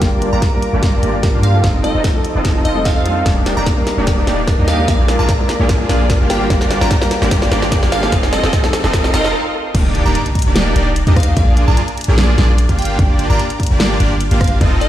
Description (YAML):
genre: future bass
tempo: 148 BPM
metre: 4/4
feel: swing 53% on 16ths, half-time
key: Eb major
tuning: A4 = 440 Hz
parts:
  - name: glassy wavetable pluck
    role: melody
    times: 0.0-14.9 s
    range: Eb5 to Bb5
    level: -24 LUFS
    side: right 2 dB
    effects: chorus, sidechain pumping, ping-pong delay
  - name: dark baby grand piano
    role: accompaniment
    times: 0.0-9.2 s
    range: F3 to Bb4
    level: -22 LUFS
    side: left 1 dB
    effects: sidechain pumping, tape echo
  - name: shimmering ambient pad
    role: sustained chords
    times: 0.0-9.3 s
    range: G4 to Eb6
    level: -31 LUFS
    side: equal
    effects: none
  - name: soft supersaw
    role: riff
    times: 0.0-14.9 s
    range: Bb3 to F5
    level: -19 LUFS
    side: equal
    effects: sidechain pumping, low-pass filter
  - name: warm 808-style bass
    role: bass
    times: 0.0-14.9 s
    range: Eb1 to G2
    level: -16 LUFS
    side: equal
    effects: sidechain pumping
  - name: electronic kick drum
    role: drums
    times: 0.0-14.7 s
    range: none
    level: -16 LUFS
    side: equal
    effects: studio reverb
  - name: pop drum kit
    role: drums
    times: 0.0-14.9 s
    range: crash cymbal, hi-hat, rim click, snare drum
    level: -22 LUFS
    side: equal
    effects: high-pass filter on snare, studio reverb, high-pass filter on hats, high-pass filter on cymbals
  - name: riser and impact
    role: sound effects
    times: 2.9-11.4 s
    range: none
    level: -26 LUFS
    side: equal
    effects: none
room: light reverb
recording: played on a big sound system in a bare room, large studio reverb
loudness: -12 LUFS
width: side -12 dB against mid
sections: 0.0-9.7 A section; 9.7-14.9 B section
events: build-up 0.0-9.7; drum fill 0.0-9.3; filter sweep on supersaw synth 0.0-9.7; stop 9.3-9.7; drop 9.7-14.9; impact 9.7-11.4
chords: 0.0 Gm7; 1.6 F7; 3.3 Ebmaj7; 4.9 Bb7; 6.3 Gm7; 8.1 F7; 9.7 Ebmaj7; 11.4 Bb7; 12.8 Gm7